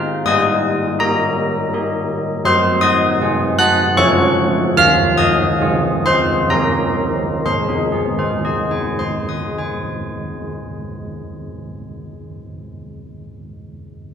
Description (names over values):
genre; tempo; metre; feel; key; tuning
classical, tune for church bells; 60-83 BPM; 3/4; straight; Ab major; A4 = 440 Hz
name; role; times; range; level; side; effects
old church bells; solo; 0.0-11.9 s; Eb3 to Gb6; -15 LUFS; equal; none
room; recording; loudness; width
moderate scoring stage reverb, RT60 1.7 s; minimal, uncompressed stereo recording; -14 LUFS; side -7 dB against mid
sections
0.0-7.5 A section; 7.5-10.4 B section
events
slowing down 1.4-7.5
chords
0.3 Eb/G; 2.5 Ab7/Gb; 4.0 Db/F; 4.8 Ab/Eb; 6.5 Eb7; 7.5 Ab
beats
| 0.26 0.99 1.72 | 2.45 3.20 3.97 | 4.76 5.60 6.49 | 7.45 8.44 9.43